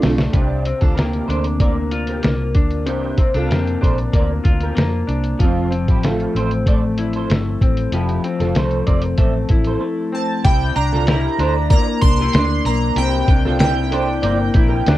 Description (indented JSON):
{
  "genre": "indie pop, bedroom pop",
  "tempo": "95 BPM",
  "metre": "4/4",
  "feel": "straight",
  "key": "unclear",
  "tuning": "A4 = 440 Hz",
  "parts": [
    { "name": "electric guitar through a small old amp", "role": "accompaniment", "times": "0.0-15.0 s", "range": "C3 to F4", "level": "-22 LUFS", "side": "left 3 dB", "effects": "lush chorus, warbly pitch drift" },
    { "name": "vintage muted fingered electric bass", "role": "bass", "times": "0.0-15.0 s", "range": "F1 to F2", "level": "-21 LUFS", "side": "equal", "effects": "none" },
    { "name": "lo-fi sampler-style drum kit", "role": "drums", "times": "0.0-15.0 s", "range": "hi-hat, kick drum, snare drum", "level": "-17 LUFS", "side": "equal", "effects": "vintage 12-bit sampler grit, cassette tape" },
    { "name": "electric guitar through a small old amp", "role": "second line", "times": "0.3-14.8 s", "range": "C4 to E5", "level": "-26 LUFS", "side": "right 4 dB", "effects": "ensemble chorus, tape echo" },
    { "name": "chorused retro synth keys", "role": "melody", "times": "10.1-15.0 s", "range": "G5 to C6", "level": "-22 LUFS", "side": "right 3 dB", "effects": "wide subtle chorus, cassette tape, tape echo" }
  ],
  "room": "light reverb",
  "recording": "home recording on cassette",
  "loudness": "-15 LUFS",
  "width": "side -15 dB against mid",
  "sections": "0.3-10.4 A section; 10.4-15.0 B section",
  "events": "drum fill 0.0-0.3; break 9.8-10.4",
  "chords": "0.3 C9sus4; 5.4 Fmaj7; 10.4 C9",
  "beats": "| 0.34 0.97 1.60 2.23 | 2.87 3.50 4.13 4.76 | 5.39 6.03 6.66 7.29 | 7.92 8.55 9.19 9.82 | 10.45 11.08 11.71 12.34 | 12.97 13.60 14.23 14.86"
}